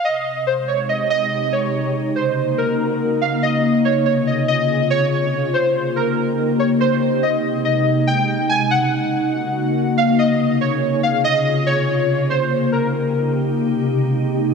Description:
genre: IDM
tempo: 142 BPM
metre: 4/4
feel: straight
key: Ab major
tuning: A4 = 440 Hz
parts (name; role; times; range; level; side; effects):
- warbly lo-fi synth keys; melody; 0.0-13.3 s; Bb4 to Ab5; -19 LUFS; right 1 dB; chorus, ping-pong delay
- glassy FM pad; sustained chords; 0.4-14.5 s; C3 to Ab4; -19 LUFS; left 1 dB; ensemble chorus, built-in reverb
room: moderate lush hall reverb, RT60 2.7 s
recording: none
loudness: -16 LUFS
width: side -5 dB against mid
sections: 0.1-13.6 A section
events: none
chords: 0.1 Abmaj7; 1.8 Gb6; 3.4 Dbmaj7; 5.1 Eb7; 6.8 Abmaj7; 8.5 Gb6; 10.2 Dbmaj7; 11.9 Eb7; 13.6 Abmaj7

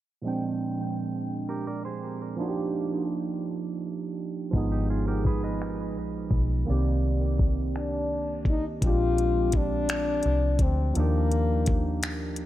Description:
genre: slow six-eight R&B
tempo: 56 BPM (dotted quarters)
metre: 6/8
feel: straight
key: unclear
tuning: A4 = 438 Hz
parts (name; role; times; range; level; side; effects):
- barky tine electric piano; accompaniment; 0.2-12.5 s; Bb2 to G5; -30 LUFS; right 4 dB; overdrive, lush chorus, analog delay
- clean electric guitar; second line; 1.5-6.5 s; Eb4 to Eb5; -39 LUFS; right 4 dB; analog delay
- vintage muted fingered electric bass; bass; 4.5-12.5 s; Ab1 to Eb2; -27 LUFS; equal; none
- smooth R&B drum kit; drums; 4.5-12.5 s; finger snaps, hi-hat, kick drum; -26 LUFS; equal; none
- mellow French horn; melody; 7.8-12.4 s; Bb3 to F4; -28 LUFS; left 4 dB; analog delay
room: light reverb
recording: echo-heavy mix, low-pass filter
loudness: -25 LUFS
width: side -14 dB against mid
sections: 0.2-8.8 A section; 8.8-12.5 B section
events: none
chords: 0.2 Bb13; 2.4 Ebmaj9; 4.5 Abm6; 6.7 Cm9; 8.8 Bb13; 11.0 Ebmaj9

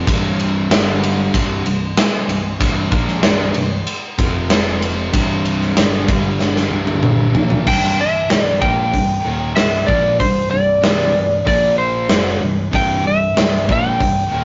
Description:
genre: hard rock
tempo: 95 BPM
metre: 4/4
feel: straight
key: unclear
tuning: A4 = 437 Hz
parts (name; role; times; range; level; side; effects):
- distorted electric guitar; riff; 0.0-14.4 s; C2 to Bb3; -24 LUFS; equal; distortion
- heavy high-gain guitar; riff; 0.0-14.4 s; C2 to Bb3; -30 LUFS; equal; none
- picked electric bass; bass; 0.0-14.4 s; C1 to Bb1; -26 LUFS; equal; none
- big rock drum kit; drums; 0.1-14.2 s; crash cymbal, hi-hat, kick drum, ride cymbal, snare drum, toms; -20 LUFS; equal; none
- lightly driven lead guitar; melody; 7.7-14.4 s; C5 to G5; -19 LUFS; equal; none
room: moderate studio reverb, RT60 0.5 s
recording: rough rehearsal-room recording, tube saturation, nothing above 7.5 kHz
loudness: -16 LUFS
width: mono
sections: 0.0-7.7 A section; 7.7-14.4 B section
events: drum fill 6.4-7.7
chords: 0.1 C5; 0.7 G5; 1.3 C5; 4.2 F5; 5.1 C5; 6.1 G5; 6.7 C5; 7.7 C; 11.5 Bb5; 12.1 C

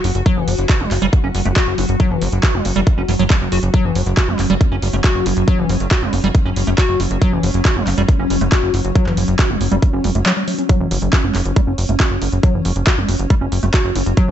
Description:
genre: psychedelic trance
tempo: 138 BPM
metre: 4/4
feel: straight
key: unclear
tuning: A4 = 437 Hz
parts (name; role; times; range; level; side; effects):
- evolving wavetable pad; sustained chords; 0.0-14.3 s; F#3 to F#4; -24 LUFS; equal; ensemble chorus, built-in reverb, phaser, sidechain pumping
- liquid acid bass; riff; 0.0-14.3 s; E3 to F#4; -21 LUFS; moving between left 6 dB and right 5 dB; chorus, auto-pan, sidechain pumping, digital delay
- plucky analog bass; bass; 0.0-14.3 s; F#1; -19 LUFS; equal; none
- big-room dance drum kit; drums; 0.0-14.3 s; handclaps, hi-hat; -23 LUFS; right 1 dB; overdrive
- electronic kick drum; drums; 0.3-14.3 s; none; -15 LUFS; equal; overdrive
room: digital ambience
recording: nothing above 8.0 kHz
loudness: -14 LUFS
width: side -10 dB against mid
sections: 0.0-14.3 A section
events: none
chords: 0.0 F#5

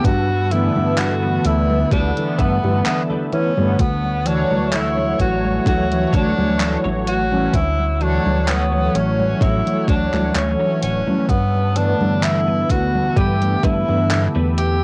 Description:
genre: vaporwave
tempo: 64 BPM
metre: 4/4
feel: swing 53% on 16ths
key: D major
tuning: A4 = 440 Hz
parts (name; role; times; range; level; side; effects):
- breathy tenor saxophone; melody; 0.0-14.8 s; B3 to G4; -24 LUFS; equal; vintage 12-bit sampler grit, cassette tape, tape echo
- mellow synth brass; accompaniment; 0.0-14.8 s; D3 to C#5; -23 LUFS; equal; analog chorus, vintage 12-bit sampler grit, cassette tape
- lush unison pad; sustained chords; 0.0-14.8 s; B4 to E6; -38 LUFS; equal; none
- chorused synth bass; bass; 0.0-14.8 s; D1 to E3; -23 LUFS; equal; none
- electronic kick drum; drums; 0.0-13.8 s; none; -22 LUFS; equal; small room ambience, cassette tape
- gated 80s digital drum machine; drums; 0.0-14.8 s; congas, handclaps, hi-hat; -29 LUFS; equal; gated reverb, small room ambience, cassette tape
- clean electric guitar; riff; 0.5-14.6 s; D4 to A5; -34 LUFS; equal; ensemble chorus, vintage 12-bit sampler grit, cassette tape, tape echo
room: moderate booth ambience, RT60 0.2 s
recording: home recording on cassette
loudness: -18 LUFS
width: mono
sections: 0.0-14.8 A section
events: clean electric guitar fill 1.9-3.8; kick drops out 10.4-11.3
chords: 0.0 G69; 3.8 Dmaj7; 11.3 G69

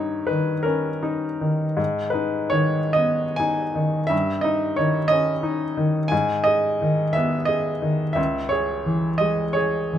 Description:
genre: classical, romantic nocturne for solo piano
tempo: 44-62 BPM (dotted quarters)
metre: 12/8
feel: rubato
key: G# minor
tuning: A4 = 440 Hz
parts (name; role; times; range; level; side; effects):
- clear baby grand piano; solo; 0.0-10.0 s; C#2 to G#5; -20 LUFS; equal; none
room: little or no reverb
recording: close, detailed microphones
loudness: -20 LUFS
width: side -10 dB against mid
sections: 0.0-10.0 A section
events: none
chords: 0.0 D#7/G; 1.8 G#m; 4.1 D#7/G; 6.1 G#m; 8.2 C#m

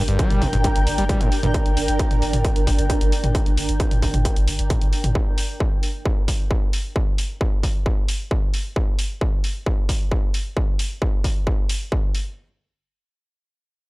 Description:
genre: driving peak-time techno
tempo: 133 BPM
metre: 4/4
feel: straight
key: G minor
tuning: A4 = 441 Hz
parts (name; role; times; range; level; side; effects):
- screaming distorted acid line; riff; 0.0-1.5 s; G2 to G3; -25 LUFS; equal; distortion, chorus, sidechain pumping, tape echo
- saturated sub bass; bass; 0.0-5.2 s; G1; -24 LUFS; equal; overdrive, sidechain pumping, low-pass filter
- granular cloud pad; texture; 0.0-5.2 s; D4 to G5; -26 LUFS; right 1 dB; built-in reverb, sidechain pumping
- techno drum kit; drums; 0.1-12.2 s; hi-hat, toms; -28 LUFS; equal; sidechain pumping on hats, sidechain pumping on toms, sidechain pumping on cymbals
- electronic kick drum; drums; 0.2-12.0 s; none; -21 LUFS; equal; distortion
room: little or no reverb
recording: dry, gritty hardware recording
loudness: -19 LUFS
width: side -21 dB against mid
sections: 0.0-12.4 A section; 12.4-13.9 B section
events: none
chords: 0.0 Gm; 12.4 N.C.

